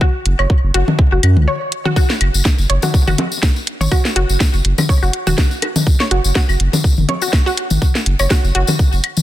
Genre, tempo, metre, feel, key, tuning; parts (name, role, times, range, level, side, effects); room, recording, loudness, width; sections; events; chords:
minimal techno; 123 BPM; 4/4; swing 55% on 16ths; A4 = 440 Hz
resonant blip pluck; riff; 0.0-8.6 s; F#4 to C#5; -22 LUFS; equal; chorus, sidechain pumping, digital delay
electronic kick drum; drums; 0.0-8.9 s; -13 LUFS; equal
saturated sub bass; bass; 0.3-9.0 s; E1 to F#2; -15 LUFS; equal; sidechain pumping
garage drum kit; drums; 0.3-9.1 s; hi-hat, snare drum; -21 LUFS; equal
electronic claves, toms and bongos; percussion; 0.4-9.2 s; -19 LUFS; left 2 dB; ping-pong delay
tambourine; percussion; 2.0-9.2 s; -25 LUFS; left 4 dB
little or no reverb; dense, heavily limited modern master; -13 LUFS; side -14 dB against mid
0.0-9.2 A section
break 1.5-2.0
0.0 F#5